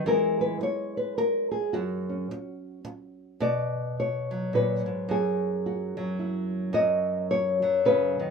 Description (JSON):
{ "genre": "folk, solo fingerstyle acoustic guitar", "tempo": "108 BPM", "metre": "3/4", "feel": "swing 61% on 8ths", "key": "unclear", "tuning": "A4 = 440 Hz", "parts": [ { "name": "nylon-string guitar", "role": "solo", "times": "0.0-8.3 s", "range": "F#2 to D#5", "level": "-25 LUFS", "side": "left 1 dB", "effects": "none" } ], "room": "wet small room reverb, RT60 0.5 s", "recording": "minimal, uncompressed stereo recording", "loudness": "-24 LUFS", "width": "side -5 dB against mid", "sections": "0.0-3.4 A section; 3.4-8.3 B section", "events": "none", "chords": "0.1 E; 1.7 F#5; 3.4 Bm; 5.1 Eadd9/F#; 6.7 B/F#" }